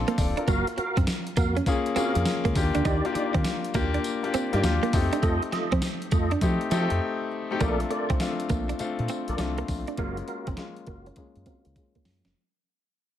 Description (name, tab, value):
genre	R&B, new jack swing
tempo	101 BPM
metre	4/4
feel	swing 66% on 16ths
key	Bb major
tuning	A4 = 440 Hz
part	warm concert grand piano	accompaniment	0.0-12.4 s	Ab3 to F5	-29 LUFS	left 4 dB	low-pass filter
part	fingered electric bass	bass	0.0-12.3 s	Eb1 to F3	-28 LUFS	equal	none
part	direct-recorded clean electric guitar	riff	0.1-12.3 s	A3 to Eb4	-31 LUFS	right 6 dB	analog chorus, low-pass filter
part	crisp 8-bit digital drum machine	drums	0.1-12.3 s	hi-hat, kick drum, snare drum, tambourine	-29 LUFS	equal	overdrive
part	tonewheel organ	stabs	0.5-11.7 s	Eb4 to F5	-32 LUFS	right 1 dB	chorus vibrato, slow rotary speaker, low-pass filter
room	light reverb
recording	none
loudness	-24 LUFS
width	side -11 dB against mid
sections	0.0-7.6 A section; 7.6-12.4 B section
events	break 7.0-7.6; fade-out 7.6-12.4; filter sweep 7.6-12.4; drum fill 11.2-12.4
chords	0.5 Gbmaj7; 2.6 Ebmaj7; 4.9 F7; 7.6 Bbmaj7; 10.0 Gbmaj7